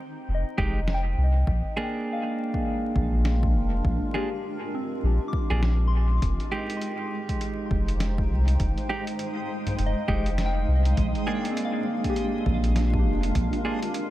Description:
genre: ambient dub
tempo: 101 BPM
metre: 4/4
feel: swing 60% on 16ths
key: unclear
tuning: A4 = 440 Hz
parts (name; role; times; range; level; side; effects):
- granular cloud pad; sustained chords; 0.0-14.1 s; Ab3 to G5; -34 LUFS; equal; built-in reverb
- soft synth bell; arpeggios; 0.0-14.1 s; C4 to D6; -35 LUFS; left 4 dB; chorus, phaser, low-pass filter, tape echo
- soft dub sub bass; bass; 0.3-13.5 s; F1 to C2; -23 LUFS; equal; none
- clean electric guitar; stabs; 0.6-13.8 s; Ab3 to Ab4; -31 LUFS; right 2 dB; spring reverb, dub echo
- electronic kick drum; drums; 0.6-13.5 s; none; -30 LUFS; equal; overdrive, studio reverb
- lo-fi sampler-style drum kit; drums; 0.9-14.1 s; congas, hi-hat, snare drum; -36 LUFS; equal; overdrive, studio reverb, dub echo
- backwards swelling texture; texture; 9.3-14.1 s; Ab3; -37 LUFS; right 4 dB; built-in reverb
room: little or no reverb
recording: dark, warm production, vinyl crackle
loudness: -23 LUFS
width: side -15 dB against mid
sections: 0.0-14.1 A section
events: fade-in on ambient pad 0.0-14.1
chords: 0.0 Fm9; 1.5 Bb7; 6.2 Fm9; 11.0 Bb7

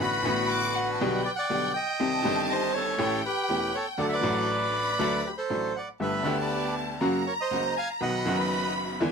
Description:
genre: tango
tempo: 120 BPM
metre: 4/4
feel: rubato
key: G major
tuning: A4 = 440 Hz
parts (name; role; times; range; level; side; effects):
- bandoneon; melody; 0.0-8.7 s; F#4 to Ab5; -28 LUFS; right 2 dB; none
- warm studio violin section; second line; 0.0-9.1 s; F#5 to D6; -32 LUFS; left 1 dB; none
- bright upright piano; accompaniment; 0.0-9.1 s; E1 to A4; -28 LUFS; left 1 dB; none
- warm studio string section; stabs; 0.0-9.1 s; A2 to G#4; -37 LUFS; left 1 dB; none
room: light reverb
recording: close, detailed microphones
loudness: -25 LUFS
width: side -6 dB against mid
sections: 0.0-9.1 A section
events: none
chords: 0.0 D6/A; 1.0 G/B; 2.0 Cm; 3.0 A7; 4.0 D; 6.0 Gadd9; 7.0 F#; 8.0 B

